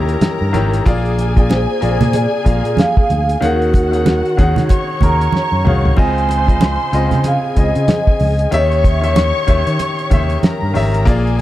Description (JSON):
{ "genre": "lush 1970s-style soul", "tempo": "94 BPM", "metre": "4/4", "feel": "swing 58% on 16ths", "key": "unclear", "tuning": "A4 = 440 Hz", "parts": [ { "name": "muted studio string section", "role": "second line", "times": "0.0-11.4 s", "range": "Gb4 to Db6", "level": "-22 LUFS", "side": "left 1 dB", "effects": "none" }, { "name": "bright grand piano", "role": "accompaniment", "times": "0.0-11.4 s", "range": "Db3 to Gb5", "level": "-20 LUFS", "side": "left 3 dB", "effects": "none" }, { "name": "fingered electric bass", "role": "bass", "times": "0.0-11.4 s", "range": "Ab1 to Eb3", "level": "-17 LUFS", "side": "equal", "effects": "none" }, { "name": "cloth-damped thuddy drum kit", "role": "drums", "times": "0.1-11.4 s", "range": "hi-hat, kick drum, snare drum, splash cymbal, toms", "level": "-15 LUFS", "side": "equal", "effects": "none" }, { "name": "congas", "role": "percussion", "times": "0.2-11.4 s", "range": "none", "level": "-22 LUFS", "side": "right 4 dB", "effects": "none" }, { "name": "vibraphone with soft mallets", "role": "melody", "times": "1.5-9.6 s", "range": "Bb4 to Bb5", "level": "-19 LUFS", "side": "right 1 dB", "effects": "none" } ], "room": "light reverb, small room ambience", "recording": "dark, warm production", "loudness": "-12 LUFS", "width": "side -14 dB against mid", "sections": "0.0-11.4 A section", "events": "drum fill 5.3-6.0", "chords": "0.0 Eb7b9; 0.9 Bb7; 3.4 Ebm11; 6.0 Dbmaj9; 8.5 Eb7b9" }